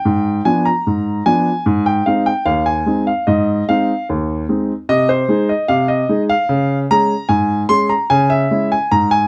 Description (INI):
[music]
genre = ragtime piano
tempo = 74 BPM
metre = 2/4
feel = straight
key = Ab major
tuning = A4 = 440 Hz
[part]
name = warm upright piano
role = solo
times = 0.0-9.3 s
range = Eb2 to C6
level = -16 LUFS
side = equal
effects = none
[sound]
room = light reverb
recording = close, detailed microphones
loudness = -16 LUFS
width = mono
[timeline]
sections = 0.0-9.3 A section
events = none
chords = 0.0 Abdim7; 1.7 Ab; 4.9 Ab/C; 6.5 Db5; 8.1 Dbm